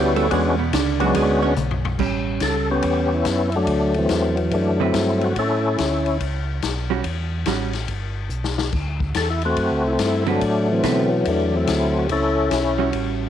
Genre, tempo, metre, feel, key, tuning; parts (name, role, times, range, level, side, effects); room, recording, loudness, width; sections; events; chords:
soul jazz organ trio; 143 BPM; 4/4; swing 65% on 8ths; A mixolydian; A4 = 439 Hz
percussive tonewheel organ; melody; 0.0-6.2, 9.2-12.9 s; E3 to A4; -20 LUFS; left 2 dB; slow rotary speaker, overdrive, chorus vibrato, slapback echo
vintage hollow-body jazz guitar; accompaniment; 0.0-7.7, 10.3-13.3 s; B2 to C#5; -25 LUFS; right 11 dB
mellow tonewheel organ; bass; 0.0-13.3 s; G1 to B2; -25 LUFS; equal; overdrive, chorus vibrato, slow rotary speaker
vintage drum kit; drums; 0.2-13.1 s; crash cymbal, hi-hat, kick drum, ride cymbal, snare drum, toms; -28 LUFS; left 6 dB
moderate plate reverb, RT60 2.2 s; 1960s-style stereo with parts hard left and right; -18 LUFS; side -10 dB against mid
0.0-2.0 A section; 2.0-13.3 B section
hollow-body jazz guitar solo 0.0-2.0; drum fill 1.6-2.0, 8.3-8.7
0.3 E13; 2.0 A13; 3.7 D9; 5.4 A9; 8.7 D13; 12.1 A13